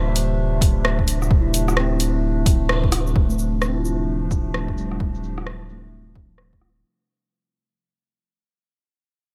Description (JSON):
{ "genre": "future garage", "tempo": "130 BPM", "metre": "4/4", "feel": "swing 62% on 16ths", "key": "D minor", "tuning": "A4 = 440 Hz", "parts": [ { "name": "muted felt-like synth keys", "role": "accompaniment", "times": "0.0-7.0 s", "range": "F3 to E5", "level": "-31 LUFS", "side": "equal", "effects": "chorus, vintage 12-bit sampler grit, sidechain pumping, low-pass filter, delay" }, { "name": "warbly tape-like pad", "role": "sustained chords", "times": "0.0-6.8 s", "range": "C3 to E5", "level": "-31 LUFS", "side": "equal", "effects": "chorus, built-in reverb, sidechain pumping" }, { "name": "soft dub sub bass", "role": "bass", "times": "0.0-6.8 s", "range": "D1", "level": "-25 LUFS", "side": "equal", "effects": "sidechain pumping" }, { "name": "deep house drum kit", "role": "drums", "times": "0.2-6.7 s", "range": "hi-hat, rim click, shaker", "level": "-28 LUFS", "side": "equal", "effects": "low-pass filter on hats, low-pass filter on perc, low-pass filter on snare, low-pass filter on room" }, { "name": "electronic kick drum", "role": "drums", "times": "0.6-6.6 s", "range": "none", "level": "-21 LUFS", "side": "equal", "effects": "none" } ], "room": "light reverb, digital ambience", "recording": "none", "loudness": "-21 LUFS", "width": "mono", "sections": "0.0-3.2 A section; 3.2-6.8 B section", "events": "band accent 2.7; fade-out 3.2-6.8; filter sweep on drum 3.2-6.8; filter sweep on synth keys 3.2-6.8", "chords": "0.0 Dm7", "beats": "0.39 0.85 | 1.31 1.77 2.23 2.69 | 3.15 3.62 4.08 4.54 | 5.00 5.46 5.92 6.38" }